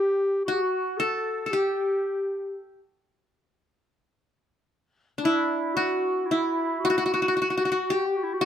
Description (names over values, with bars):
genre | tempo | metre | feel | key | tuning
Turkish makam ensemble | 113 BPM (eighths) | 10/8 | straight | unclear | A4 = 441 Hz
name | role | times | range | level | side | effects
qanun | melody | 0.0-8.5 s | D4 to A4 | -25 LUFS | left 1 dB | none
warm clarinet | second line | 0.0-8.4 s | E4 to A4 | -27 LUFS | equal | none
room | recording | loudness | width
wet small room reverb, RT60 0.5 s | minimal, uncompressed stereo recording | -23 LUFS | side -9 dB against mid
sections
0.0-8.5 A section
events
none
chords
none